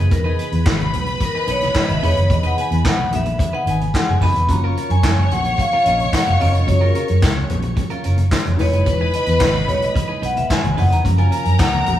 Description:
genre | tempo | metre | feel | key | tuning
disco | 110 BPM | 4/4 | straight | unclear | A4 = 440 Hz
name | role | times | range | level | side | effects
vibraphone with medium hard mallets | melody | 0.0-12.0 s | G#4 to B5 | -21 LUFS | left 1 dB | none
clear studio string section | second line | 0.0-12.0 s | A#4 to C#6 | -26 LUFS | left 1 dB | none
clean electric guitar | accompaniment | 0.0-11.8 s | C#4 to B4 | -30 LUFS | right 3 dB | none
tine electric piano | accompaniment | 0.0-12.0 s | D#3 to B4 | -29 LUFS | left 1 dB | phaser
fingered electric bass | bass | 0.0-12.0 s | E1 to F#2 | -18 LUFS | equal | none
vintage drum kit | drums | 0.1-12.0 s | handclaps, hi-hat, kick drum, snare drum | -20 LUFS | equal | none
congas | percussion | 0.1-12.0 s | none | -29 LUFS | left 2 dB | none
tambourine | percussion | 5.0-11.7 s | none | -38 LUFS | right 5 dB | none
room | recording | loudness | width
moderate large studio reverb, RT60 1.1 s | band playing live in one room | -15 LUFS | side -12 dB against mid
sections
0.0-12.0 A section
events
vibraphone solo 0.0-12.0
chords
0.0 Emaj7; 4.5 F#maj7; 8.6 Emaj7; 11.0 F#maj7

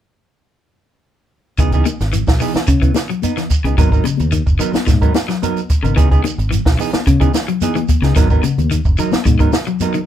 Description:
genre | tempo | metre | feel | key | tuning
afrobeat | 110 BPM | 4/4 | straight | C# dorian | A4 = 437 Hz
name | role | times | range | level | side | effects
electric guitar at the edge of break-up | arpeggios | 1.6-10.1 s | A#2 to F#3 | -22 LUFS | left 5 dB | none
semi-hollow electric guitar | stabs | 1.6-10.0 s | E3 to A#4 | -22 LUFS | right 6 dB | none
fingered electric bass | bass | 1.6-9.5 s | F#1 to C#3 | -18 LUFS | equal | none
compact cocktail drum kit | drums | 1.6-10.1 s | hi-hat, kick drum, snare drum | -15 LUFS | equal | none
shekere | percussion | 1.6-10.1 s | none | -27 LUFS | right 4 dB | none
congas | percussion | 1.9-9.9 s | none | -23 LUFS | left 9 dB | none
room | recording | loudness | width
moderate small room reverb, RT60 0.5 s | band playing live in one room | -13 LUFS | side -11 dB against mid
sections
1.6-10.1 A section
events
none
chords
1.6 C#m9; 3.8 G#m9; 6.0 C#m9; 8.2 G#m9

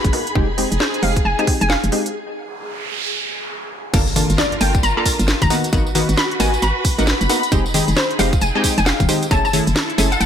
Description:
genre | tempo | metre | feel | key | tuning
UK garage, two-step garage | 134 BPM | 4/4 | swing 62% on 16ths | unclear | A4 = 440 Hz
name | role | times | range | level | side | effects
soft string machine | sustained chords | 0.0-3.9 s | Ab4 to Ab5 | -31 LUFS | left 1 dB | ensemble chorus, sidechain pumping
hollow knocking FM bass | bass | 0.0-10.3 s | Eb1 to Ab1 | -20 LUFS | equal | none
electronic kick drum | drums | 0.0-9.4 s | none | -20 LUFS | equal | none
garage drum kit | drums | 0.0-10.3 s | congas, crash cymbal, hi-hat, rim click, snare drum, tambourine | -21 LUFS | left 1 dB | none
dark studio string section | texture | 0.0-10.3 s | Eb4 to Cb6 | -26 LUFS | equal | sidechain pumping
punchy chord stab | stabs | 0.1-10.1 s | Ab3 to A4 | -22 LUFS | equal | chorus, dub echo
hollow square pluck | melody | 0.8-10.3 s | C5 to Cb6 | -23 LUFS | left 1 dB | ensemble chorus, dub echo
noise sweep and impact | sound effects | 2.4-5.7 s | none | -26 LUFS | right 2 dB | none
room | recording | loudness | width
light reverb | none | -15 LUFS | side -8 dB against mid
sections
0.0-3.9 A section; 3.9-10.3 B section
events
filter sweep on synth stab 0.0-3.9; break 2.1-3.9; noise sweep 2.4-3.9; drop 3.9-10.3; impact 3.9-5.7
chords
0.4 Fm9; 2.1 N.C.; 3.9 Gm9; 5.5 Abm9; 7.5 Fm9; 9.3 F#m9

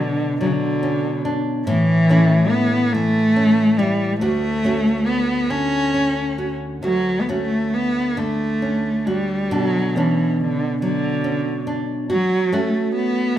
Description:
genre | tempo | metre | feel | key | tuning
celtic folk, Celtic slow air | 46 BPM (dotted quarters) | 6/8 | uneven beats, rubato | unclear | A4 = 440 Hz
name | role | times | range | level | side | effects
warm cello | melody | 0.0-13.4 s | C#3 to C#4 | -19 LUFS | equal | none
nylon-string guitar | accompaniment | 0.0-13.4 s | D2 to F#4 | -22 LUFS | equal | none
room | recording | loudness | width
moderate recital hall reverb, RT60 1.8 s | minimal, uncompressed stereo recording | -17 LUFS | side -11 dB against mid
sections
0.0-13.4 A section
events
none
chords
0.0 Bmadd9; 1.7 A; 4.2 Dmaj7; 9.5 Bmadd9; 12.1 F#m

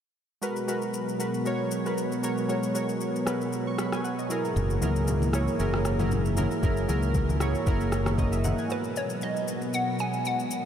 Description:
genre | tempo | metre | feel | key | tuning
amapiano | 116 BPM | 4/4 | swing 55% on 16ths | G# minor | A4 = 440 Hz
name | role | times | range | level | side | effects
warm analog keys | accompaniment | 0.4-10.7 s | F#3 to C#6 | -30 LUFS | right 1 dB | chorus
airy breathy pad | sustained chords | 0.5-10.7 s | G#2 to B3 | -31 LUFS | equal | chorus, sidechain pumping
smooth R&B drum kit | drums | 0.4-10.6 s | kick drum, rim click, shaker | -34 LUFS | equal | none
modern bright fingered electric bass | bass | 4.6-8.5 s | F#1 to C#2 | -27 LUFS | equal | none
congas | percussion | 4.6-8.6 s | none | -37 LUFS | left 2 dB | none
hollow square pluck | melody | 8.7-10.7 s | B4 to G#5 | -30 LUFS | equal | chorus, diffuse ambient delay
room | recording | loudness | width
wet huge ambient reverb, RT60 7.6 s | dreamy mix soaked in reverb | -25 LUFS | side -9 dB against mid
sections
0.4-8.7 A section; 8.7-10.7 B section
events
none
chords
0.4 G#m9; 4.3 F#9; 8.7 G#m9

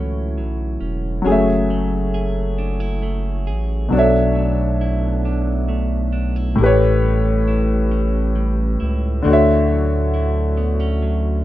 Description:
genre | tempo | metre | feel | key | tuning
slow six-eight R&B | 45 BPM (dotted quarters) | 6/8 | straight | F# minor | A4 = 440 Hz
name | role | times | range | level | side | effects
clean electric guitar | second line | 0.0-11.4 s | A2 to G#4 | -29 LUFS | right 5 dB | none
warm baby grand piano | accompaniment | 0.0-11.4 s | A2 to E5 | -19 LUFS | left 1 dB | none
round analog bass | bass | 0.0-11.4 s | E1 to D2 | -20 LUFS | right 1 dB | none
room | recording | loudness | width
little or no reverb | rough home demo mix | -16 LUFS | side -14 dB against mid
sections
0.0-1.3 A section; 1.3-11.4 B section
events
none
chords
0.0 Dmaj9; 1.3 F#m9; 3.9 Bm11; 6.6 A7; 9.3 Dmaj9

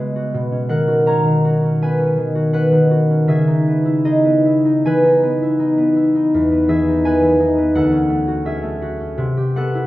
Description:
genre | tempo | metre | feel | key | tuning
classical, solo harp piece | 71-86 BPM | 4/4 | rubato | C# dorian | A4 = 440 Hz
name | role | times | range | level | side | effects
concert harp | solo | 0.0-9.9 s | D2 to A#5 | -14 LUFS | equal | none
room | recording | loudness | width
wet recital hall reverb, RT60 1.5 s | none | -14 LUFS | side -16 dB against mid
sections
0.0-9.9 A section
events
none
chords
0.4 B69; 3.3 C#m9; 6.3 Emaj7; 7.8 Dmaj7; 9.2 Cmaj7

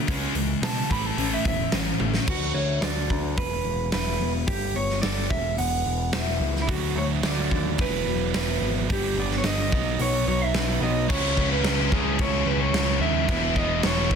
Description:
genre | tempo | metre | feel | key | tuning
quiet-loud alternative rock | 109 BPM | 4/4 | straight | E major | A4 = 439 Hz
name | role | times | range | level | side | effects
picked steel-string acoustic guitar | arpeggios | 0.0-11.1 s | E2 to A4 | -33 LUFS | left 13 dB | tape echo
overdriven electric guitar | riff | 0.0-2.2, 6.7-14.2 s | G2 to E4 | -29 LUFS | right 13 dB | none
scooped high-gain guitar | riff | 0.0-2.3, 11.1-14.2 s | A2 to E4 | -29 LUFS | left 15 dB | distortion
growling picked electric bass | bass | 0.1-14.2 s | E1 to B2 | -28 LUFS | equal | overdrive
big rock drum kit | drums | 0.1-14.2 s | crash cymbal, hi-hat, kick drum, snare drum, toms | -27 LUFS | equal | soft clipping on kick
electric guitar through a small old amp | melody | 0.6-14.2 s | E4 to B5 | -29 LUFS | right 2 dB | none
fuzz guitar | riff | 11.1-14.2 s | E2 to C#4 | -32 LUFS | left 2 dB | distortion
room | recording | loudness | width
small room ambience | dense, heavily limited modern master | -22 LUFS | side -6 dB against mid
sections
0.0-2.3 A section; 2.3-11.1 B section; 11.1-14.2 C section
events
clean electric guitar solo 0.0-2.3; drum fill 2.0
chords
0.1 C#m; 0.9 A; 2.3 D; 3.4 E5; 4.5 Gadd9; 5.3 Esus2; 6.7 D; 7.8 Esus2; 8.9 Gadd9; 9.7 B; 11.1 C#m; 13.3 E

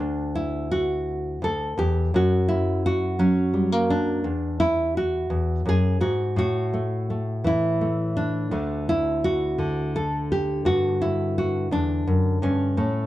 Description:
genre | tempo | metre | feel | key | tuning
folk, solo fingerstyle acoustic guitar | 56 BPM (dotted quarters) | 6/8 | straight | D major | A4 = 440 Hz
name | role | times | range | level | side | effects
nylon-string guitar | solo | 0.0-13.1 s | D2 to A4 | -21 LUFS | equal | none
room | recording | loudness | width
light reverb | dark, warm production | -21 LUFS | side -15 dB against mid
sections
0.0-13.1 A section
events
none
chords
0.0 D; 2.1 F#; 4.2 E; 6.4 A5; 8.5 D; 10.6 G5

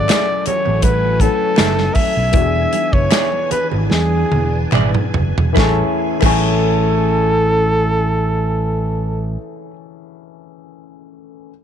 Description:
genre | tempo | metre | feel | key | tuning
lush 1970s-style soul | 70-82 BPM | 4/4 | swing 54% on 16ths | A major | A4 = 441 Hz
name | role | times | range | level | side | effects
warm flugelhorn | melody | 0.0-9.4 s | G#4 to E5 | -19 LUFS | equal | none
dark grand piano | accompaniment | 0.0-11.5 s | C#3 to G#5 | -24 LUFS | left 12 dB | none
soft string machine | sustained chords | 0.0-8.7 s | A2 to G#5 | -27 LUFS | equal | ensemble chorus
fingered electric bass | bass | 0.0-9.4 s | E1 to E2 | -18 LUFS | equal | none
electric guitar through a small old amp | riff | 0.1-9.8 s | A3 to D5 | -23 LUFS | right 14 dB | none
modern studio drum kit | drums | 0.1-6.5 s | crash cymbal, hi-hat, kick drum, snare drum, toms | -18 LUFS | equal | none
congas | percussion | 0.1-6.4 s | none | -27 LUFS | right 15 dB | none
group handclap | percussion | 0.1-6.4 s | none | -28 LUFS | left 15 dB | none
room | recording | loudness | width
moderate spring reverb, RT60 2.1 s | 1960s-style stereo with parts hard left and right | -14 LUFS | side -9 dB against mid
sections
0.0-5.6 A section; 5.6-9.0 B section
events
slowing down 0.0-5.6; drum fill 3.9-5.6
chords
0.0 F#m9; 2.3 E7; 5.6 Amaj7

